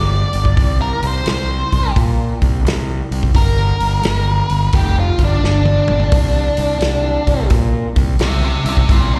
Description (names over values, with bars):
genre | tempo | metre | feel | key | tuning
blues rock power trio and southern rock | 87 BPM | 4/4 | swing 66% on 8ths | unclear | A4 = 439 Hz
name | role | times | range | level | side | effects
octave-fuzz lead guitar | melody | 0.0-9.2 s | D4 to E5 | -22 LUFS | equal | distortion, slapback echo
fuzz fingered electric bass | bass | 0.0-9.2 s | F1 to Bb2 | -19 LUFS | equal | overdrive
vintage drum kit | drums | 0.3-9.1 s | hi-hat, kick drum, snare drum, toms | -20 LUFS | equal | none
room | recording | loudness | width
little or no reverb | live gig heard through the venue's PA, recital hall reverb | -16 LUFS | mono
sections
0.0-9.2 A section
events
lead electric guitar solo 0.0-9.2; drum fill 5.4-6.1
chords
0.0 G5; 0.6 Bbsus2/C; 3.3 G5; 6.1 C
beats
| 0.57 1.27 1.96 2.65 | 3.35 4.04 4.74 5.43 | 6.12 6.82 7.51 8.20 | 8.89